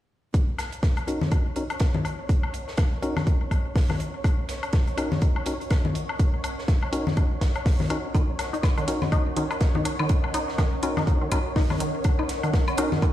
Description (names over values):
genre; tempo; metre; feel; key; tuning
minimal techno; 123 BPM; 4/4; swing 58% on 16ths; Eb minor; A4 = 437 Hz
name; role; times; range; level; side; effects
compact cocktail drum kit; drums; 0.3-13.1 s; hi-hat, snare drum; -38 LUFS; right 2 dB; sidechain pumping on hats, high-pass filter on hats, high-pass filter on snare, high-pass filter on room
electronic kick drum; drums; 0.3-13.1 s; none; -23 LUFS; equal; none
flickering grainy texture; texture; 0.8-13.1 s; Db5; -37 LUFS; right 1 dB; built-in reverb, sidechain pumping
warbly tape-like pad; texture; 1.5-13.1 s; Db4 to Gb5; -36 LUFS; equal; chorus, built-in reverb, sidechain pumping
electronic hi-hat; drums; 0.6-12.9 s; none; -39 LUFS; right 2 dB; low-pass filter on hats
woodblock and congas; percussion; 0.6-13.1 s; none; -30 LUFS; left 3 dB; digital delay
percussive organ stab; stabs; 1.1-12.9 s; Db4 to Bb4; -31 LUFS; left 1 dB; chorus, digital delay
resonant blip pluck; riff; 8.1-13.0 s; Eb3 to Eb4; -30 LUFS; equal; wide subtle chorus, sidechain pumping, dub echo
room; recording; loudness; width
light reverb; played on a big sound system in a bare room, stone room reverb; -22 LUFS; side -13 dB against mid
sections
0.3-13.1 A section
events
fade-in on ambient pad 0.3-13.1; filter sweep on synth stab 0.3-13.1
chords
0.3 Ebm7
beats
| 0.34 0.83 1.32 1.80 | 2.29 2.78 3.27 3.76 | 4.24 4.73 5.22 5.71 | 6.20 6.68 7.17 7.66 | 8.15 8.63 9.12 9.61 | 10.10 10.59 11.07 11.56 | 12.05 12.54 13.02